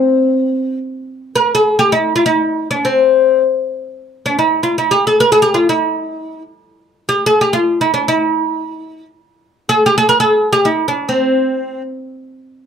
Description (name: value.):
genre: arabic.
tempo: free time.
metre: none.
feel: none.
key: C maqam huzam.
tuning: A4 = 440 Hz.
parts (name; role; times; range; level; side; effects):
oud; solo; 0.0-11.8 s; C4 to Bb4+50c; -12 LUFS; equal; none.
room: light reverb.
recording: close, detailed microphones.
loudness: -12 LUFS.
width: side -7 dB against mid.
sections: 1.0-12.7 A section.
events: none.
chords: none.